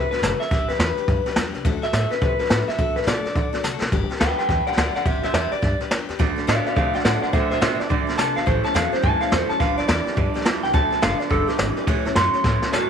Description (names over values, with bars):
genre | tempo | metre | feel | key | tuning
rockabilly | 211 BPM | 4/4 | swing 63% on 8ths | D mixolydian | A4 = 437 Hz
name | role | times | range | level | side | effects
electric guitar through a small old amp | melody | 0.0-12.9 s | F#4 to C6 | -23 LUFS | left 1 dB | tape echo
picked steel-string acoustic guitar | accompaniment | 0.0-12.9 s | A2 to C#5 | -30 LUFS | left 12 dB | none
upright bass | bass | 0.0-12.9 s | F#1 to D3 | -27 LUFS | equal | none
jazz brush drum kit | drums | 0.1-12.8 s | hi-hat, kick drum, snare drum | -23 LUFS | equal | none
electric guitar through a small old amp | riff | 6.2-12.9 s | G2 to B3 | -26 LUFS | right 12 dB | none
room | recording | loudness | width
light reverb, studio ambience | 1960s-style stereo with parts hard left and right | -19 LUFS | side -7 dB against mid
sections
0.0-12.9 A section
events
clean electric guitar solo 0.0-12.9; drum fill 3.6, 12.4-12.9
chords
0.0 D; 0.5 G; 1.6 D; 3.9 G; 6.2 D; 8.5 A; 9.6 G; 10.7 D; 11.3 G; 11.9 A